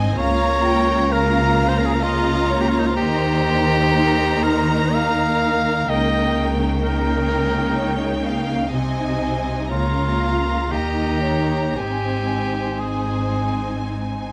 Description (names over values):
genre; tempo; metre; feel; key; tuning
classical, slow romantic movement for symphony orchestra; 57-66 BPM; 3/4; rubato; unclear; A4 = 440 Hz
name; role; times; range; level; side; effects
rich symphonic violin section; melody; 0.0-14.3 s; G5 to Bb5; -30 LUFS; equal; none
warm symphonic violin section; second line; 0.0-14.3 s; Bb4 to G5; -31 LUFS; equal; none
warm symphonic viola section; accompaniment; 0.0-14.3 s; Bb3 to F4; -27 LUFS; equal; none
rich symphonic cello section; bass; 0.0-14.3 s; Ab2 to Eb3; -28 LUFS; equal; none
warm symphonic double bass section; bass; 0.0-14.3 s; Ab1 to Eb2; -27 LUFS; equal; none
clear cor anglais; second line; 0.2-13.8 s; Eb4 to F5; -25 LUFS; equal; none
room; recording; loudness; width
moderate concert hall reverb, RT60 1.8 s; vinyl crackle; -20 LUFS; mono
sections
0.0-14.3 A section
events
none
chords
0.2 Bbm/Db; 3.0 Eb; 5.9 Eb7/Db; 8.7 Ab/C; 9.7 Bbm/Db; 10.7 Eb; 11.8 Ab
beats
| 0.19 1.11 2.03 | 2.97 3.93 4.94 | 5.89 6.83 7.77 | 8.73 9.71 10.72 | 11.76 12.80 13.84